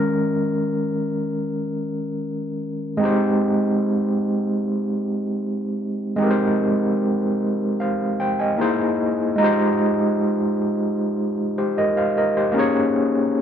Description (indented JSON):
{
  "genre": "soul",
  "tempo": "75 BPM",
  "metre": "4/4",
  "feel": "straight",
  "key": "Ab major",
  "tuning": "A4 = 440 Hz",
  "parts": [
    { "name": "overdriven tine electric piano", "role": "solo", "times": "0.0-13.4 s", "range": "Eb3 to Ab5", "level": "-19 LUFS", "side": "equal", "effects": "fast tremolo" }
  ],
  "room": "moderate studio reverb, RT60 0.8 s",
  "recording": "band playing live in one room",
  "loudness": "-19 LUFS",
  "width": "side -8 dB against mid",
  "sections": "0.0-3.0 A section; 3.0-13.4 B section",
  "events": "tine electric piano solo 0.0-3.0",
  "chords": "0.0 Eb7sus4; 3.0 Abmaj7; 8.6 C7alt; 9.4 Fm9; 12.6 Eb7sus4"
}